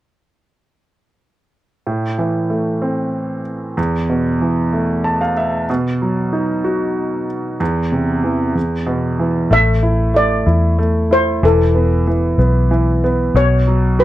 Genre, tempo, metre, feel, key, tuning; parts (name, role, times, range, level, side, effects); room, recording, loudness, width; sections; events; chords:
pop; 63 BPM (dotted quarters); 6/8; straight; A minor; A4 = 444 Hz
bright concert grand piano; accompaniment; 1.9-14.0 s; E2 to A5; -17 LUFS; right 1 dB
steel pan; melody; 9.5-14.0 s; A4 to E5; -16 LUFS; left 1 dB
vintage muted fingered electric bass; bass; 9.5-14.0 s; E1 to E2; -15 LUFS; left 1 dB
little or no reverb; dry, close 1970s-style studio recording; -14 LUFS; side -14 dB against mid
1.9-9.5 A section; 9.5-14.0 B section
grand piano fill 4.7-5.7
1.9 Am; 3.8 Esus4; 5.7 B; 7.6 C/E; 8.6 E5; 9.5 A5; 11.4 Esus4; 13.3 B5